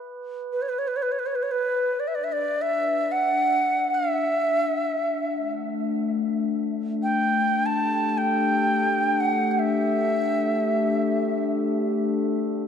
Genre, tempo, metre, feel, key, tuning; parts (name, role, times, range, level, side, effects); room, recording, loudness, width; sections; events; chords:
world meditative, free-time meditation music; free time; A4 = 440 Hz
glass harmonica; texture; 0.0-12.7 s; A3 to B4; -26 LUFS; left 3 dB
breathy bright Native American-style cedar flute; melody; 0.5-11.5 s; B4 to A5; -24 LUFS; right 1 dB; diffuse ambient delay
wet cathedral reverb, RT60 5.7 s; dark, warm production; -22 LUFS; side -8 dB against mid
0.0-12.7 A section